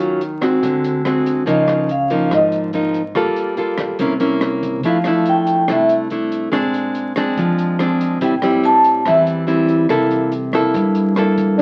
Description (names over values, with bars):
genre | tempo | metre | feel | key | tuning
bossa nova | 142 BPM | 4/4 | straight | unclear | A4 = 439 Hz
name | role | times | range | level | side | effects
nylon-string guitar | accompaniment | 0.0-11.6 s | G2 to A4 | -19 LUFS | equal | none
upright bass | bass | 0.0-11.6 s | G1 to G2 | -28 LUFS | equal | none
compact cocktail drum kit | drums | 0.0-11.6 s | hi-hat, kick drum, rim click | -31 LUFS | equal | none
vibraphone with soft mallets | melody | 1.5-9.2 s | Eb5 to A5 | -18 LUFS | equal | none
warm trombone | second line | 11.6 s | D4 | -14 LUFS | equal | none
room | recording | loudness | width
moderate club reverb, RT60 0.8 s | very old 78 rpm record, vinyl crackle | -17 LUFS | mono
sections
0.0-11.6 A section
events
vibraphone solo 0.0-11.6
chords
0.0 Ebm9; 0.6 D7#11; 1.5 Db69; 3.2 Gm9; 4.0 C7b9; 4.8 Fmaj13; 6.5 Bb9; 8.2 Am7; 9.9 C6